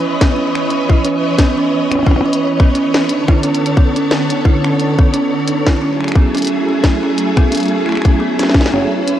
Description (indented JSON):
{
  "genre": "IDM",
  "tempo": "88 BPM",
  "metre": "4/4",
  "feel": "swing 56% on 16ths",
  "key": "unclear",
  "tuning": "A4 = 445 Hz",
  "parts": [
    { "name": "soft string machine", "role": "sustained chords", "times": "0.0-9.2 s", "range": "D3 to D#5", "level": "-18 LUFS", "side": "left 1 dB", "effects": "ensemble chorus" },
    { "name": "glitchy drum kit", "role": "drums", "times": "0.0-9.2 s", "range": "finger snaps, hi-hat, percussion blips, snare drum", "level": "-19 LUFS", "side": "left 1 dB", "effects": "none" },
    { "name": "kalimba", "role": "arpeggios", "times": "0.2-9.2 s", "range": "B3 to C#5", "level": "-17 LUFS", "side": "right 3 dB", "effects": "digital delay" },
    { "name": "electronic kick drum", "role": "drums", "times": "0.2-8.7 s", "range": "none", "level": "-11 LUFS", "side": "left 1 dB", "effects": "none" }
  ],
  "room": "moderate lush hall reverb, RT60 1.6 s, digital ambience",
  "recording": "worn, warbling old tape, cassette tape, warbly pitch drift",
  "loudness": "-12 LUFS",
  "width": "side -11 dB against mid",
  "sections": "0.0-9.2 A section",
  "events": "none",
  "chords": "0.0 C#m9; 3.1 Bm9; 5.8 F#m9",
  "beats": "0.02 | 0.70 1.39 2.07 2.75 | 3.43 4.11 4.79 5.48 | 6.16 6.84 7.52 8.20 | 8.88"
}